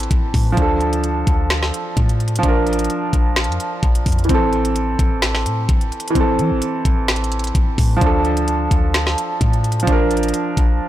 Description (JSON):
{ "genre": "hip hop, trap", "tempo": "129 BPM", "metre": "4/4", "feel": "half-time", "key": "A phrygian", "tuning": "A4 = 440 Hz", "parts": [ { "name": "warm concert grand piano", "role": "accompaniment", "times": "0.0-10.9 s", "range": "E3 to Bb4", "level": "-20 LUFS", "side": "right 2 dB", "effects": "none" }, { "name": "clean 808-style bass", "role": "bass", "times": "0.0-10.8 s", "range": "A1 to E3", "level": "-21 LUFS", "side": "equal", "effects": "none" }, { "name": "trap drum kit", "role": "drums", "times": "0.0-10.7 s", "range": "hi-hat, kick drum, snare drum", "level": "-18 LUFS", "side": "equal", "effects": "none" } ], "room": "little or no reverb", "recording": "blown-out, overdriven recording, overdrive", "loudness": "-15 LUFS", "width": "side -13 dB against mid", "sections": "0.0-4.3 A section; 4.3-10.9 B section", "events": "none", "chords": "0.0 Am; 0.6 Dm; 2.4 Bb; 4.3 Am; 8.0 Dm; 9.9 Bb" }